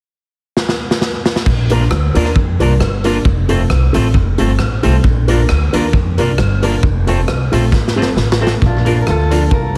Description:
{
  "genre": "ska",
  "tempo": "134 BPM",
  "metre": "4/4",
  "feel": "swing 55% on 8ths",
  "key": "Bb major",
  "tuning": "A4 = 440 Hz",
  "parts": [
    { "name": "raw garage drum kit", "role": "drums", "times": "0.6-9.8 s", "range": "crash cymbal, hi-hat, kick drum, rim click, snare drum", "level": "-19 LUFS", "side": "equal", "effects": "tape echo" },
    { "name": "upright bass", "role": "bass", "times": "1.5-9.8 s", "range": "F1 to F2", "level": "-17 LUFS", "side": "equal", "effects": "none" },
    { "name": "electric guitar at the edge of break-up", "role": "accompaniment", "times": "1.7-9.8 s", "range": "A3 to Bb4", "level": "-24 LUFS", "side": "equal", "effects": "subtle chorus" },
    { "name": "honky-tonk upright piano", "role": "stabs", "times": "1.7-9.8 s", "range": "F3 to Bb4", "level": "-22 LUFS", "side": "equal", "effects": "tape echo" },
    { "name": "metal-body resonator slide guitar", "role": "melody", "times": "8.6-9.8 s", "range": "D4 to Bb4", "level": "-22 LUFS", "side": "equal", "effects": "tape echo" }
  ],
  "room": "small room ambience",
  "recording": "heavily compressed radio sound, multiband compression",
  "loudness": "-14 LUFS",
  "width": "mono",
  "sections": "0.0-1.5 A section; 1.5-8.6 B section; 8.6-9.8 C section",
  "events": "drum fill 0.6-1.5, 7.7-8.6",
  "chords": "0.0 N.C.; 1.5 Bb; 3.3 F; 5.0 Bb; 6.8 F; 8.6 Bb"
}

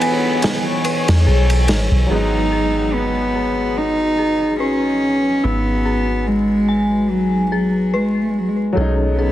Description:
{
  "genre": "trip hop",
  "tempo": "72 BPM",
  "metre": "4/4",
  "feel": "swing 55% on 16ths",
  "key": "G# minor",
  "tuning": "A4 = 439 Hz",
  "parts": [
    { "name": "warm cello", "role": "melody", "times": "0.0-9.3 s", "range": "F#3 to D#4", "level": "-18 LUFS", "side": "equal", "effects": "tape echo" },
    { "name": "clear upright piano", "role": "accompaniment", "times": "0.0-9.3 s", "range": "F#3 to D#4", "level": "-26 LUFS", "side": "left 1 dB", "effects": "harmonic tremolo, tape echo" },
    { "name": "deep dark ambient pad", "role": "sustained chords", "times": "0.0-9.3 s", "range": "E3 to G#5", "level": "-27 LUFS", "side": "left 1 dB", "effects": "chorus, built-in reverb" },
    { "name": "dark detuned synth bell", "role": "arpeggios", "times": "0.0-9.3 s", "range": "D#4 to G#5", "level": "-26 LUFS", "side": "left 2 dB", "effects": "chorus, phaser, low-pass filter, tape echo" },
    { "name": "crunchy breakbeat drum kit", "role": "drums", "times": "0.0-1.9 s", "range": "ride cymbal, snare drum", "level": "-23 LUFS", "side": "equal", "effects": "none" },
    { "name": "soft 808-style bass", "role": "bass", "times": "1.1-9.3 s", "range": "G#1 to E2", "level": "-19 LUFS", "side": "equal", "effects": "tube saturation" }
  ],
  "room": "light reverb, studio reverb",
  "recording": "dense, heavily limited modern master, vinyl crackle",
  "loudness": "-15 LUFS",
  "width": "side -13 dB against mid",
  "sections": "0.0-2.1 A section; 2.1-9.3 B section",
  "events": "filter sweep on synth bell 2.1-9.3",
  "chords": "0.0 Emaj7; 2.1 G#m7; 8.8 B9"
}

